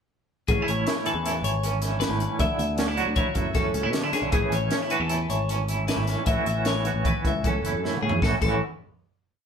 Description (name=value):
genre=math rock and midwest emo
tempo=155 BPM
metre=5/4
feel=straight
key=A major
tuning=A4 = 440 Hz
part: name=twangy electric guitar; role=accompaniment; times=0.5-8.6 s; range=A2 to A4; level=-28 LUFS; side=right 4 dB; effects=tremolo
part: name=twelve-string electric guitar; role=arpeggios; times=0.5-8.6 s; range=G#4 to E5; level=-29 LUFS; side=left 5 dB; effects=none
part: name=picked electric bass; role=bass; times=0.5-8.6 s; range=F#1 to D3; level=-28 LUFS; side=equal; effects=none
part: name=crisp fusion drum kit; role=drums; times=0.5-8.5 s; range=crash cymbal, hi-hat, kick drum, snare drum, toms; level=-28 LUFS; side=equal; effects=none
room=moderate studio ambience, RT60 0.5 s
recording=band playing live in one room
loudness=-22 LUFS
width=side -7 dB against mid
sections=0.5-8.2 A section; 8.2-9.5 final chord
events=drum fill 7.8-8.2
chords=0.5 Amaj9; 2.4 Dmaj9; 4.3 Amaj9; 6.3 A6